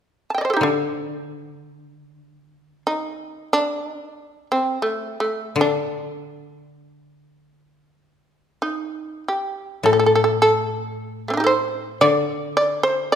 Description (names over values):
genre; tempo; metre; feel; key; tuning
japanese traditional, Japanese chamber music; free time; none; none; D in sen; A4 = 440 Hz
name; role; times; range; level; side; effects
shamisen; melody; 0.3-13.2 s; A3 to A5; -20 LUFS; right 1 dB; none
koto; accompaniment; 0.6-13.2 s; A2 to D3; -24 LUFS; left 5 dB; none
room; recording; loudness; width
moderate recital hall reverb, RT60 1.6 s; recorded in a church or concert hall; -19 LUFS; side -8 dB against mid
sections
0.0-9.9 A section; 9.9-13.2 B section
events
none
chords
none